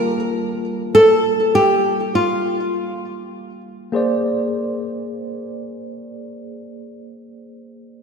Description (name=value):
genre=sunset chillout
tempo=free time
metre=none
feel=none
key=G minor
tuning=A4 = 440 Hz
part: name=nylon-string guitar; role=melody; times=0.0-3.6 s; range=F4 to Bb4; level=-15 LUFS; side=equal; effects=digital delay
part: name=tine electric piano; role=accompaniment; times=0.0-8.0 s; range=G3 to A5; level=-25 LUFS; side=equal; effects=auto-pan, digital delay
room=wet lush hall reverb, RT60 2.8 s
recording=rough home demo mix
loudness=-16 LUFS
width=side -6 dB against mid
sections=0.0-8.0 A section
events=none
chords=0.0 Gm9; 3.9 Bb9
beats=free time